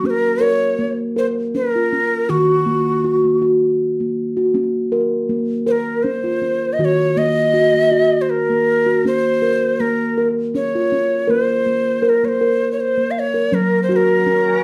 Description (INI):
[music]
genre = world meditative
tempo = 80 BPM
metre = 3/4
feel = swing 54% on 16ths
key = Bb minor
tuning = A4 = 440 Hz
[part]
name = breathy bright Native American-style cedar flute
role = melody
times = 0.0-14.6 s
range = Gb4 to F5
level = -20 LUFS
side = equal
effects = slapback echo
[part]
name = steel tongue drum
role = arpeggios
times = 0.0-14.6 s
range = Eb3 to Bb4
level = -20 LUFS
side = equal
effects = slapback echo
[part]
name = shimmering ambient pad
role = sustained chords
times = 13.9-14.6 s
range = Gb3 to Bb4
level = -28 LUFS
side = equal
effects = chorus, built-in reverb
[sound]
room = wet studio reverb, RT60 0.6 s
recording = none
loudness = -17 LUFS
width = mono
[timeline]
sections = 0.0-13.5 A section; 13.5-14.6 B section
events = none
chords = 0.0 Bbm; 2.3 Ebm; 4.5 Bbm; 6.8 Ebm; 9.0 Bbm; 11.3 Bbmadd9; 13.5 Gb